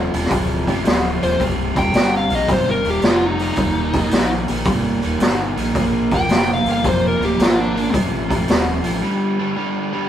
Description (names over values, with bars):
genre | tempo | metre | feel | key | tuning
blues rock power trio and southern rock | 110 BPM | 4/4 | swing 67% on 8ths | C minor | A4 = 440 Hz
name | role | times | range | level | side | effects
biting overdriven guitar | riff | 0.0-10.1 s | C2 to Bb3 | -21 LUFS | right 1 dB | spring reverb
fuzz fingered electric bass | bass | 0.0-9.0 s | C1 to Bb1 | -24 LUFS | equal | overdrive
raw garage drum kit | drums | 0.1-8.9 s | hi-hat, kick drum, snare drum | -19 LUFS | equal | none
fuzz lead guitar | melody | 1.2-7.9 s | D4 to G5 | -20 LUFS | left 1 dB | distortion
room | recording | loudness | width
moderate stone room reverb, RT60 1.4 s | rough rehearsal-room recording | -16 LUFS | side -10 dB against mid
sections
0.0-10.1 A section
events
break 9.0-10.1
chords
0.0 F5; 1.4 Cm; 3.6 Eb; 5.8 Bb; 7.9 F/A; 9.0 G5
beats
0.32 0.86 | 1.41 1.95 2.50 3.04 | 3.58 4.13 4.67 5.22 | 5.76 6.31 6.85 7.39 | 7.94 8.48 9.02 9.56